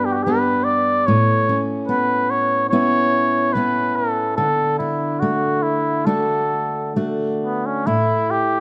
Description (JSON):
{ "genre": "celtic folk, Celtic slow air", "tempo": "64-74 BPM", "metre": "4/4", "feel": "rubato", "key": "A mixolydian", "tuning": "A4 = 441 Hz", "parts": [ { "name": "trumpet with cup mute", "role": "melody", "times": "0.0-8.6 s", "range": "B3 to D5", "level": "-21 LUFS", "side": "equal", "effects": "none" }, { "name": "fingerpicked steel-string acoustic guitar", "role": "accompaniment", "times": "0.0-8.6 s", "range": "G2 to G4", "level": "-23 LUFS", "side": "equal", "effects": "none" } ], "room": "light reverb", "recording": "close, detailed microphones", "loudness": "-19 LUFS", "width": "mono", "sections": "0.0-7.9 A section", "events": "none", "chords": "0.0 G; 1.1 Aadd9; 4.4 D; 7.9 A7(no3)", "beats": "0.26 | 1.07 1.89 2.71 3.53 | 4.37 5.21 6.06 6.96 | 7.86" }